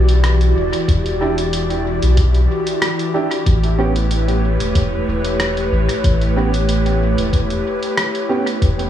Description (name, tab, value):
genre	ambient dub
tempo	93 BPM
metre	4/4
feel	swing 54% on 16ths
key	unclear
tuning	A4 = 440 Hz
part	airy breathy pad	sustained chords	0.0-8.9 s	E3 to D5	-20 LUFS	equal	chorus
part	soft dub sub bass	bass	0.0-8.9 s	E1 to B1	-17 LUFS	equal	none
part	lo-fi sampler-style drum kit	drums	0.1-8.9 s	hi-hat, rim click	-25 LUFS	equal	small room ambience, dub echo
part	electronic kick drum	drums	0.9-8.8 s	none	-16 LUFS	equal	small room ambience
part	dark upright piano	stabs	1.2-8.4 s	B3 to G4	-24 LUFS	right 2 dB	dub echo
room	light reverb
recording	studio reverb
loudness	-15 LUFS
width	side -11 dB against mid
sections	0.0-8.9 A section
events	none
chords	0.0 Em7; 3.5 A9